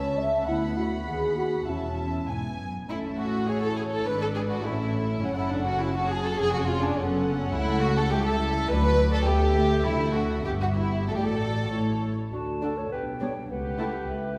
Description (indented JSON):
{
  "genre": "quick classical-period movement for symphony orchestra",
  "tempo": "103 BPM",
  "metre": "2/4",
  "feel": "rubato",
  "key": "A major, D major from 7.5 s",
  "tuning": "A4 = 440 Hz",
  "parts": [
    { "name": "dark symphonic violin section", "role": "melody", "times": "0.0-14.4 s", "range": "D4 to B5", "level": "-40 LUFS", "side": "equal", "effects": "none" },
    { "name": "warm symphonic violin section", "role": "second line", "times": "0.0-13.9 s", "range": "A3 to G#5", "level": "-31 LUFS", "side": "equal", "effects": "none" },
    { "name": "dark symphonic viola section", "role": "accompaniment", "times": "0.0-13.9 s", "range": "F#3 to C#5", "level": "-35 LUFS", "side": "equal", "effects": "none" },
    { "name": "mellow French horn section", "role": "sustained chords", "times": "0.0-2.3, 12.3-14.4 s", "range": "A3 to E5", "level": "-33 LUFS", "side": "equal", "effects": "none" },
    { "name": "dark chamber cello section", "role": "bass", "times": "0.0-14.4 s", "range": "C#2 to B2", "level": "-34 LUFS", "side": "equal", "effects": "none" },
    { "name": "dark chamber double bass section", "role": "bass", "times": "0.0-14.4 s", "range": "E1 to D#2", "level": "-33 LUFS", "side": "equal", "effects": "none" },
    { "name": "timpani", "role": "percussion", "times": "9.9-10.4 s", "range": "D3", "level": "-40 LUFS", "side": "equal", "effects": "none" },
    { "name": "hollow concert flute", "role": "second line", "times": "12.3-14.4 s", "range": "E5 to A5", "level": "-40 LUFS", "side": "equal", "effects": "none" },
    { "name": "mellow clarinet", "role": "second line", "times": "12.3-14.4 s", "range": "F#4 to C#5", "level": "-36 LUFS", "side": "equal", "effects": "none" }
  ],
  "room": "wet scoring stage reverb, RT60 1.8 s",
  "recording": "heard from further back in the room",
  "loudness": "-26 LUFS",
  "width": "mono",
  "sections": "0.0-2.9 A section; 2.9-12.3 B section; 12.3-14.4 C section",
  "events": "none",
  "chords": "0.5 Bm/D; 1.1 B/D#; 1.7 Esus4; 2.3 E; 2.9 A; 4.1 G#m7b5; 4.7 A; 5.2 F#m; 6.4 C#/E#; 7.0 F#m; 7.5 A7/C#; 8.7 D; 9.3 A5/D; 9.9 D; 10.5 Em/G; 11.1 D/A; 11.7 A; 12.3 D; 12.9 G/B; 13.5 A7/C#",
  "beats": "| 0.47 1.06 | 1.67 2.29 | 2.90 3.49 | 4.07 4.66 | 5.24 5.83 | 6.40 6.97 | 7.55 8.13 | 8.70 9.28 | 9.86 10.46 | 11.09 11.71 | 12.32 12.91 | 13.50 14.09"
}